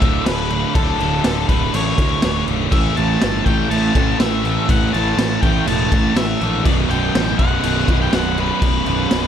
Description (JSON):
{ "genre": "quiet-loud alternative rock", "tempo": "122 BPM", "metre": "4/4", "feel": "straight", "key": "unclear", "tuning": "A4 = 439 Hz", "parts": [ { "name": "octave-fuzz lead guitar", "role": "melody", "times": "0.0-9.3 s", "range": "A4 to A5", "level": "-24 LUFS", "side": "left 3 dB", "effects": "distortion" }, { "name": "fuzz guitar", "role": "riff", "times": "0.0-9.3 s", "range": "B1 to A3", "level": "-23 LUFS", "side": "right 11 dB", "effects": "distortion" }, { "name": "scooped high-gain guitar", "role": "riff", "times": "0.0-9.3 s", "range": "B1 to A3", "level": "-24 LUFS", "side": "left 14 dB", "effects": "distortion" }, { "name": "fuzz picked electric bass", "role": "bass", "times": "0.0-9.3 s", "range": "B0 to D2", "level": "-22 LUFS", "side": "equal", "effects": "overdrive" }, { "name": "raw garage drum kit", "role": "drums", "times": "0.0-9.2 s", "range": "crash cymbal, kick drum, snare drum", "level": "-19 LUFS", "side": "equal", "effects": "none" }, { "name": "thick fuzz guitar", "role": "riff", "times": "2.7-9.3 s", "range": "B1 to A3", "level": "-25 LUFS", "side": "equal", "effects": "distortion" } ], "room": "little or no reverb", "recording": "none", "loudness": "-15 LUFS", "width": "side -9 dB against mid", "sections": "0.0-9.3 A section", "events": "none", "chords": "0.0 D5; 2.7 A5; 6.7 B5" }